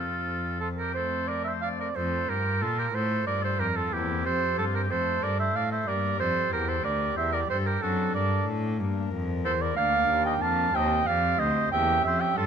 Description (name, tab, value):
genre	classical, baroque-style sonata movement with continuo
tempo	61 BPM (dotted quarters)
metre	6/8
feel	straight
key	F major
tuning	A4 = 438 Hz
part	warm oboe	melody	0.0-12.5 s	E4 to F5	-33 LUFS	left 8 dB	none
part	warm oboe	second line	0.0-12.5 s	F4 to A5	-27 LUFS	right 6 dB	none
part	pipe organ, foundations	accompaniment	0.0-12.5 s	D2 to Bb4	-34 LUFS	left 3 dB	none
part	rich cello	bass	0.0-12.5 s	D2 to Bb2	-30 LUFS	left 1 dB	none
room	moderate recital hall reverb, RT60 1.5 s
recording	close, detailed microphones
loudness	-24 LUFS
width	side -7 dB against mid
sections	0.0-2.0 A section; 2.0-12.5 B section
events	none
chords	0.0 F; 3.9 C7/E; 4.9 F; 5.9 Gm; 7.8 D7/F#; 8.8 Gm; 9.8 Bb/D; 10.7 Cm7/Eb; 11.7 Edim7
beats	0.95 | 1.96 2.95 | 3.93 4.90 | 5.88 6.85 | 7.82 8.79 | 9.77 10.74 | 11.72